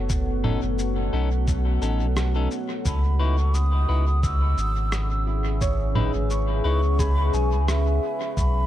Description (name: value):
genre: ambient dub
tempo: 87 BPM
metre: 4/4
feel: swing 56% on 16ths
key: C# minor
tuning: A4 = 443 Hz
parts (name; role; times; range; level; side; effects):
- deep dark ambient pad; sustained chords; 0.0-8.7 s; B3 to F#5; -29 LUFS; left 1 dB; chorus, built-in reverb
- Celtic harp; arpeggios; 0.0-8.7 s; D#4 to C#6; -37 LUFS; right 4 dB; dub echo
- warm sub bass; bass; 0.0-8.7 s; F#1 to C#2; -22 LUFS; equal; tube saturation
- electronic kick drum; drums; 0.1-8.5 s; none; -26 LUFS; equal; none
- electronic shaker, congas and rim click; drums; 0.1-8.5 s; none; -31 LUFS; right 1 dB; dub echo
- clean electric guitar; stabs; 0.4-6.8 s; C#4 to B4; -34 LUFS; left 5 dB; dub echo
- mellow hollow concert flute; melody; 2.9-8.7 s; E5 to E6; -30 LUFS; right 2 dB; dub echo
room: digital ambience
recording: echo-heavy mix, faint mains hum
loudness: -21 LUFS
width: side -12 dB against mid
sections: 0.0-8.7 A section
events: none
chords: 0.0 B7; 2.9 C#m7